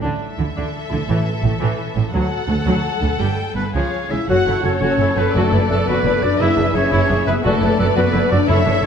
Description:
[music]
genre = cinematic, heroic adventure film score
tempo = 114 BPM (dotted quarters)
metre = 6/8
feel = straight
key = unclear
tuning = A4 = 439 Hz
[part]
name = warm studio violin section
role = melody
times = 0.0-8.8 s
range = A4 to G5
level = -27 LUFS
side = left 6 dB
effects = none
[part]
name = dark symphonic violin section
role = second line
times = 0.0-8.9 s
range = G#4 to E5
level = -26 LUFS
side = left 2 dB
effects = none
[part]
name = warm symphonic viola section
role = accompaniment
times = 0.0-8.9 s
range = E3 to A4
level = -24 LUFS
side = right 1 dB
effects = none
[part]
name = rich symphonic cello section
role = bass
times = 0.0-8.9 s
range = D2 to D3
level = -24 LUFS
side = right 2 dB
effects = none
[part]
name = warm symphonic double bass section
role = bass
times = 0.0-8.9 s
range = F#1 to D2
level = -22 LUFS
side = right 4 dB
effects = none
[part]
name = timpani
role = percussion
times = 1.1-1.6, 5.3-8.9 s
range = F#2 to A2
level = -24 LUFS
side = left 2 dB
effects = none
[part]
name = clear oboe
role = second line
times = 3.6-8.9 s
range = A4 to F#5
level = -24 LUFS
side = right 1 dB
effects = none
[part]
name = mellow French horn section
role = sustained chords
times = 3.6-8.8 s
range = A3 to F#4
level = -21 LUFS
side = left 5 dB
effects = none
[part]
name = mellow large flute ensemble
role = second line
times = 4.3-8.9 s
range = C#5 to E5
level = -28 LUFS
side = equal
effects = none
[part]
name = warm clarinet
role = second line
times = 4.3-8.8 s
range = G#4 to B4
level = -28 LUFS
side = equal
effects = none
[sound]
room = moderate concert hall reverb, RT60 1.9 s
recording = none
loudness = -15 LUFS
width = side -7 dB against mid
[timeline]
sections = 0.0-4.3 A section; 4.3-8.9 B section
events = none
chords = 0.0 Dsus2; 1.1 A5; 2.1 D; 3.2 Gsus2; 3.7 C#; 4.3 F#m; 5.4 Bm7/F#; 6.4 E/F#; 7.5 Bm7/F#

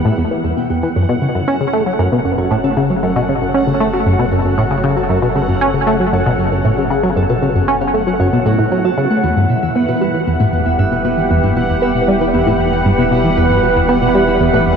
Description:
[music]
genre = ambient, sequencer-driven space music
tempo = 116 BPM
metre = 4/4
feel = straight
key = unclear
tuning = A4 = 440 Hz
[part]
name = lush unison pad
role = sustained chords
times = 0.2-14.8 s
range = C#3 to B4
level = -20 LUFS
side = equal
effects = chorus
[part]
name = concert harp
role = arpeggios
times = 0.0-14.8 s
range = C#4 to A5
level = -24 LUFS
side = moving between left 1 dB and right 5 dB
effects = auto-pan, tape echo
[part]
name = round analog bass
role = bass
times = 0.0-14.8 s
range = E1 to F#1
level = -28 LUFS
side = left 1 dB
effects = none
[part]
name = bubbling stepped-filter texture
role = texture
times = 0.0-14.8 s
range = F#5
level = -24 LUFS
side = left 1 dB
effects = chorus, built-in reverb
[part]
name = tight sequenced synth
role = riff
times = 0.1-14.8 s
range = E2 to C#4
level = -14 LUFS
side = equal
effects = chorus, tape echo
[sound]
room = wet huge ambient reverb, RT60 7.3 s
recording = cassette tape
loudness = -12 LUFS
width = side -6 dB against mid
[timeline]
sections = 0.0-14.8 A section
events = fade-in on harp 0.0-14.8; fade-in on analog synth pad 0.0-14.8; fade-in on analog synth bass 0.0-14.8; fade-in on synth texture 0.0-14.8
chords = 0.0 Em; 1.0 F#m; 9.2 Em

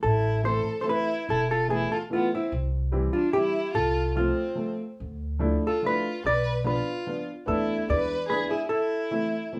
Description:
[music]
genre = musette waltz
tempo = 145 BPM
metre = 3/4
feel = straight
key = A harmonic minor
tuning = A4 = 440 Hz
[part]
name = hollow-body jazz guitar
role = melody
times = 0.0-9.6 s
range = E4 to D5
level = -29 LUFS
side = equal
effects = none
[part]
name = upright bass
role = bass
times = 0.0-8.4 s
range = E1 to E2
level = -31 LUFS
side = equal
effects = none
[part]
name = dark violin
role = second line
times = 0.1-9.6 s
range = B3 to B4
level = -34 LUFS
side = equal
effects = none
[part]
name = warm upright piano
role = accompaniment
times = 0.4-9.6 s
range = E3 to F4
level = -33 LUFS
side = equal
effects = none
[sound]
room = wet studio ambience, RT60 0.4 s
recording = band playing live in one room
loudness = -27 LUFS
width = mono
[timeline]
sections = 0.0-9.6 A section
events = none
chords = 0.0 Am; 1.3 Esus4; 2.5 C; 3.8 F/C; 5.0 Dmadd9; 6.2 Bdim; 7.5 E7sus4; 7.9 E7; 8.7 Am

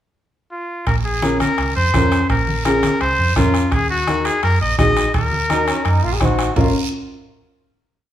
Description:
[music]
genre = latin, cumbia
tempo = 169 BPM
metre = 4/4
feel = straight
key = Bb minor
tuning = A4 = 435 Hz
[part]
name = clear trumpet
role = melody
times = 0.5-6.2 s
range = F4 to Eb5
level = -20 LUFS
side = left 1 dB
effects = none
[part]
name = hollow-body short-scale fingered electric bass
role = bass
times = 0.9-6.7 s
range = Bb1 to Gb2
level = -21 LUFS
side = equal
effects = none
[part]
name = bombo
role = percussion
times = 0.9-6.6 s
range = none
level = -22 LUFS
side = right 1 dB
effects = none
[part]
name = congas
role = percussion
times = 0.9-6.7 s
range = none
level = -27 LUFS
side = equal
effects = none
[part]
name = guiro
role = percussion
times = 0.9-6.6 s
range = none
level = -31 LUFS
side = right 6 dB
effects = none
[part]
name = timbales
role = percussion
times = 0.9-6.6 s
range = none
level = -32 LUFS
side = right 2 dB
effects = none
[part]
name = dark upright piano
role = accompaniment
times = 1.2-6.7 s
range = Db4 to C5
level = -21 LUFS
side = left 1 dB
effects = none
[part]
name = bright trombone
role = second line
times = 5.5-6.7 s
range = Db4 to Ab4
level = -24 LUFS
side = right 3 dB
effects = none
[sound]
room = wet large studio reverb, RT60 1.2 s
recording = band playing live in one room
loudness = -15 LUFS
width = side -11 dB against mid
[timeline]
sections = 0.0-0.9 pickup bar; 0.9-6.6 A section; 6.6-8.0 final chord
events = none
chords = 0.0 N.C.; 0.9 Bbmadd9; 3.7 Ebm; 6.6 Bbm

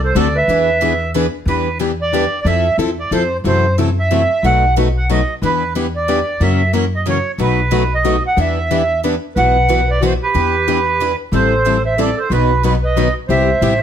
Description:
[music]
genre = acoustic string swing (jazz manouche)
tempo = 183 BPM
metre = 3/4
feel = swing 60% on 8ths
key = E minor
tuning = A4 = 440 Hz
[part]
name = accordion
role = melody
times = 0.0-13.8 s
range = B4 to F#5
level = -17 LUFS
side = right 3 dB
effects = plate reverb
[part]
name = breathy clarinet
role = second line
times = 0.0-1.1, 9.4-13.8 s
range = F#4 to C5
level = -22 LUFS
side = right 3 dB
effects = none
[part]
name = upright bass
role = bass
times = 0.0-13.8 s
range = A1 to F#2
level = -18 LUFS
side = equal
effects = none
[part]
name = picked plugged-in steel-string acoustic guitar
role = accompaniment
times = 0.2-13.7 s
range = B2 to A4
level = -20 LUFS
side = left 7 dB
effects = none
[part]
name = picked steel-string acoustic guitar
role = accompaniment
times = 0.2-13.7 s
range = B2 to B4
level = -23 LUFS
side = right 7 dB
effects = none
[sound]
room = light reverb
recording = none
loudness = -13 LUFS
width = side -9 dB against mid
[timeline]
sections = 0.0-1.5 A section; 1.5-9.4 B section; 9.4-13.8 C section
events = none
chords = 0.5 E7; 1.5 Em7; 2.5 Fmaj7; 3.4 F#m7b5; 4.4 B7; 5.4 Em7; 6.4 F#7; 7.4 B7; 8.4 Em7; 9.4 Bsus4; 10.3 Em7; 11.3 Am7; 12.3 B; 13.3 Cmaj7

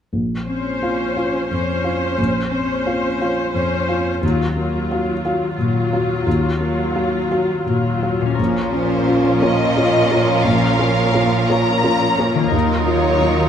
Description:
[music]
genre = cinematic, emotional film score for orchestra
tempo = 58 BPM (dotted quarters)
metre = 6/8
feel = rubato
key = Bb minor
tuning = A4 = 440 Hz
[part]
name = felt-muted upright piano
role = accompaniment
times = 0.1-13.5 s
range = Bb1 to F5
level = -20 LUFS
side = equal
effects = none
[part]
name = rich symphonic viola section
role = accompaniment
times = 0.5-13.5 s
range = F3 to C5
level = -22 LUFS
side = left 1 dB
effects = none
[part]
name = concert harp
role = arpeggios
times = 8.2-13.5 s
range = Bb2 to Bb4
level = -25 LUFS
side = left 8 dB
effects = none
[part]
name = warm symphonic violin section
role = second line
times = 8.4-13.5 s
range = F4 to Bb4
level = -22 LUFS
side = left 1 dB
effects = none
[part]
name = clear symphonic cello section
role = bass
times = 8.4-13.5 s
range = Eb2 to Bb2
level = -22 LUFS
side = right 4 dB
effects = none
[part]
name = warm symphonic violin section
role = melody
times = 8.7-13.5 s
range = C5 to Bb5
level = -21 LUFS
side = left 2 dB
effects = none
[sound]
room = light reverb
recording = close, detailed microphones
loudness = -16 LUFS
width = side -8 dB against mid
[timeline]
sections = 0.1-8.4 A section; 8.4-13.5 B section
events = none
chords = 0.1 Bbmadd9; 4.2 Ebmadd9; 8.4 Bbm; 12.5 Ebmadd9

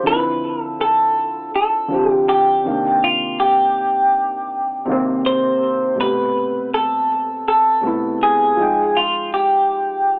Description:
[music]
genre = hip hop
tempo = 81 BPM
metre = 4/4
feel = swing 55% on 16ths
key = unclear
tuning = A4 = 440 Hz
[part]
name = semi-hollow electric guitar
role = melody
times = 0.0-10.2 s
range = F4 to C5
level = -16 LUFS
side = equal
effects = analog chorus
[part]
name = felt-muted upright piano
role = accompaniment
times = 0.0-10.2 s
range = B2 to G5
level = -22 LUFS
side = equal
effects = cassette tape
[sound]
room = light reverb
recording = dry, gritty hardware recording, cassette tape, telephone sound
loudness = -15 LUFS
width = side -37 dB against mid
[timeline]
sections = 0.0-10.2 A section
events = none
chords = 0.1 Dm9; 2.6 Cm9; 6.0 Am9; 8.6 Fm9

